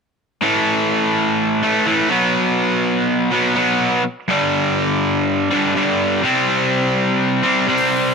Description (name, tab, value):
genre	rock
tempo	124 BPM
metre	4/4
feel	straight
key	unclear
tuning	A4 = 436 Hz
part	cranked stack guitar	riff	0.4-8.1 s	G2 to C4	-15 LUFS	equal	overdrive
room	moderate spring reverb, RT60 1.3 s, small room ambience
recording	1960s-style stereo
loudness	-15 LUFS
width	side -5 dB against mid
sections	0.4-8.1 A section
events	none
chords	0.4 A5; 2.1 B5; 4.3 G5; 6.2 C5